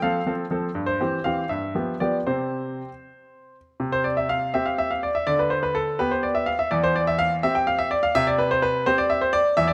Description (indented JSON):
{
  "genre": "classical-period piano sonatina",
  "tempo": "83 BPM (dotted quarters)",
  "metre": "6/8",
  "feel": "rubato",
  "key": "C major",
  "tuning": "A4 = 440 Hz",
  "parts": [
    { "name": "bright baby grand piano", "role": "solo", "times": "0.0-9.7 s", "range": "E2 to G5", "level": "-23 LUFS", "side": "equal", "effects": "none" }
  ],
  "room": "moderate recital hall reverb, RT60 1.5 s",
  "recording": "close, detailed microphones",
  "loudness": "-23 LUFS",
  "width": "mono",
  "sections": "0.0-3.8 A section; 3.8-9.7 B section",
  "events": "none",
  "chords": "0.0 F; 0.8 C/G; 1.5 G7; 2.3 C5; 5.3 G/D; 6.7 C/E; 8.1 C5"
}